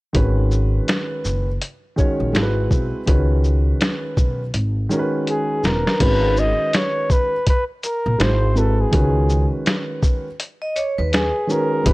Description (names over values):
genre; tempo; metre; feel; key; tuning
hip hop, jazz-hop; 82 BPM; 4/4; swing 61% on 16ths; G# minor; A4 = 441 Hz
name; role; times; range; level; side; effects
dark concert grand piano; accompaniment; 0.1-11.9 s; D#3 to C#5; -23 LUFS; right 1 dB; none
lo-fi sampler-style drum kit; drums; 0.1-11.9 s; crash cymbal, hi-hat, kick drum, shaker, snare drum; -19 LUFS; equal; vintage 12-bit sampler grit
upright bass; bass; 0.2-11.9 s; E1 to D#2; -19 LUFS; equal; tube saturation
breathy flugelhorn; melody; 5.3-11.9 s; G#4 to D#5; -21 LUFS; equal; none
vibraphone with medium hard mallets; second line; 10.6-11.8 s; B4 to D#5; -23 LUFS; right 1 dB; none
room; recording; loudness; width
small room ambience; dry, gritty hardware recording; -17 LUFS; side -21 dB against mid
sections
0.1-6.0 A section; 6.0-11.9 B section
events
drum fill 4.5-6.0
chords
0.1 G#m7; 2.3 G#7alt; 3.1 C#7sus2; 6.0 G#m7; 8.2 G#7alt; 8.9 C#sus2